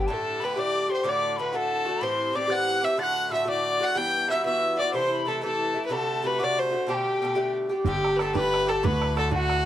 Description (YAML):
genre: celtic folk, Celtic jig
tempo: 123 BPM (dotted quarters)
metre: 6/8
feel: straight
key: G major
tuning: A4 = 439 Hz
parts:
  - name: wooden whistle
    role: second line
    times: 0.0-9.7 s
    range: F#5 to A6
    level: -31 LUFS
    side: left 3 dB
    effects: none
  - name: Irish bouzouki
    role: accompaniment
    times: 0.0-9.7 s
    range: G2 to G4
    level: -28 LUFS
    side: equal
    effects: none
  - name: upright bass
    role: bass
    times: 0.0-0.1, 7.9-9.7 s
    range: G1 to D2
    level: -29 LUFS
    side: equal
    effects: none
  - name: rich fiddle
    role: melody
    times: 0.1-9.7 s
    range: F#4 to G5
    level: -26 LUFS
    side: equal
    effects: none
  - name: bodhran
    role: percussion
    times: 7.8-9.6 s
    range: none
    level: -30 LUFS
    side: right 5 dB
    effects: none
room: small room ambience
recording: dry, close 1970s-style studio recording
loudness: -23 LUFS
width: side -12 dB against mid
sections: 0.1-7.9 A section; 7.9-9.7 A section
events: none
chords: 0.1 Gsus2; 1.0 D; 2.0 Am7; 3.0 D; 4.0 Emadd9; 4.9 Am; 5.9 D7; 6.9 Gadd9; 7.9 Gsus2; 8.8 D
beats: | 0.07 0.55 | 1.04 1.53 | 2.02 2.50 | 2.99 3.48 | 3.97 4.45 | 4.94 5.43 | 5.92 6.40 | 6.89 7.38 | 7.86 8.35 | 8.84 9.32